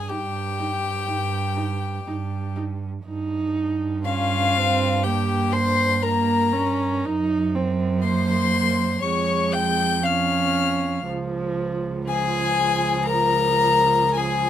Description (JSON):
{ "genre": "classical, slow romantic movement for string quartet", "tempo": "60 BPM", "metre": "4/4", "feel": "rubato", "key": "Eb major", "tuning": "A4 = 440 Hz", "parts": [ { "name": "rich violin", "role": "melody", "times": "0.0-14.5 s", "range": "F5 to G6", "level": "-24 LUFS", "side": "left 7 dB", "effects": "none" }, { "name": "warm violin", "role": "second line", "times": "0.0-14.5 s", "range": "F4 to G5", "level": "-25 LUFS", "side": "left 2 dB", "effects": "none" }, { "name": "warm viola", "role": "accompaniment", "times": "0.1-14.5 s", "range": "F3 to Eb4", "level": "-26 LUFS", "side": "right 3 dB", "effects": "none" }, { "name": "dark cello", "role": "bass", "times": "0.1-14.5 s", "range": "Db2 to G2", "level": "-26 LUFS", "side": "right 4 dB", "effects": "none" } ], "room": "light reverb", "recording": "close, detailed microphones", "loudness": "-20 LUFS", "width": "side -10 dB against mid", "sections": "0.0-14.5 A section", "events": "none", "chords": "0.0 Eb/G; 3.0 Eb7/G; 7.0 Ebm6/Gb; 9.0 Db/F; 11.1 Db" }